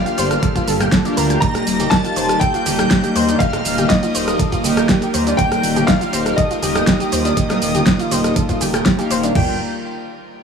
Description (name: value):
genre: progressive house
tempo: 121 BPM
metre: 4/4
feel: straight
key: unclear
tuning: A4 = 435 Hz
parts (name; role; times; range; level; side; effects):
- clear baby grand piano; melody; 0.0-9.6 s; Eb5 to Bb5; -24 LUFS; left 2 dB; sidechain pumping, tape echo
- airy dreamy lead; second line; 0.0-9.6 s; Eb6 to Bb6; -28 LUFS; left 1 dB; chorus, sidechain pumping, tape echo
- evolving wavetable pad; sustained chords; 0.0-9.6 s; D3 to Bb4; -23 LUFS; left 1 dB; phaser, built-in reverb, sidechain pumping
- chorused polysynth; stabs; 0.0-9.5 s; Bb3 to F5; -23 LUFS; right 2 dB; sidechain pumping, tape echo
- analog pluck; arpeggios; 0.1-9.6 s; D4 to G5; -24 LUFS; left 1 dB; chorus, sidechain pumping, tape echo
- pop drum kit; drums; 0.1-9.3 s; hi-hat, rim click, shaker, snare drum; -20 LUFS; equal; overdrive, sidechain pumping on hats, sidechain pumping on perc
- dark detuned saw bass; bass; 0.2-9.6 s; Eb1 to Eb2; -22 LUFS; left 1 dB; tube saturation, sidechain pumping
- pop drum kit; drums; 0.4-9.5 s; crash cymbal, kick drum, toms; -19 LUFS; right 1 dB; overdrive
- congas; percussion; 0.7-8.8 s; none; -29 LUFS; right 2 dB; sidechain pumping on perc
room: light reverb, digital ambience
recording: none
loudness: -14 LUFS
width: side -6 dB against mid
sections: 0.0-9.4 A section; 9.4-10.4 B section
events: drop 0.0-9.4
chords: 0.0 Gm7; 1.4 Eb; 9.4 Gm7